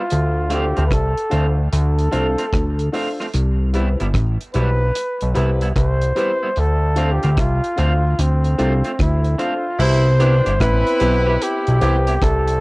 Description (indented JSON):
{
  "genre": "roots reggae",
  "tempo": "74 BPM",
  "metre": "4/4",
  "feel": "swing 65% on 16ths",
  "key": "C major",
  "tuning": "A4 = 440 Hz",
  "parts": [
    { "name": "warm flugelhorn", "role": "melody", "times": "0.0-12.6 s", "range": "C4 to C5", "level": "-22 LUFS", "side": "equal", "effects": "cassette tape, dub echo" },
    { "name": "fat analog bass", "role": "bass", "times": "0.1-12.6 s", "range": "G1 to D2", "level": "-17 LUFS", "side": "equal", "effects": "none" },
    { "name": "deep reggae drum kit", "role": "drums", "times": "0.1-12.6 s", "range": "crash cymbal, hi-hat, kick drum, rim click", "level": "-24 LUFS", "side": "equal", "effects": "cassette tape" },
    { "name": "electric guitar at the edge of break-up", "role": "accompaniment", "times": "0.5-12.1 s", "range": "G3 to G4", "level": "-28 LUFS", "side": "right 2 dB", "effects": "dub echo" },
    { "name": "dark upright piano", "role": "stabs", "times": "0.5-12.1 s", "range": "C4 to C5", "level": "-24 LUFS", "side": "left 2 dB", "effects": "none" },
    { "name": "warm horn section", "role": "second line", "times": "9.8-12.0 s", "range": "B2 to G4", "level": "-24 LUFS", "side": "equal", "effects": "dub echo" }
  ],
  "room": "little or no reverb",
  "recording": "home recording on cassette",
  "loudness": "-15 LUFS",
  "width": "side -25 dB against mid",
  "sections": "0.0-9.8 A section; 9.8-12.6 B section",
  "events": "none",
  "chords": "0.1 Dm7; 3.3 Cmaj7; 6.6 Dm7; 9.8 Cmaj7",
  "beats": "| 0.10 0.91 1.72 2.52 | 3.33 4.14 4.95 5.75 | 6.56 7.37 8.18 8.99 | 9.79 10.60 11.41 12.22"
}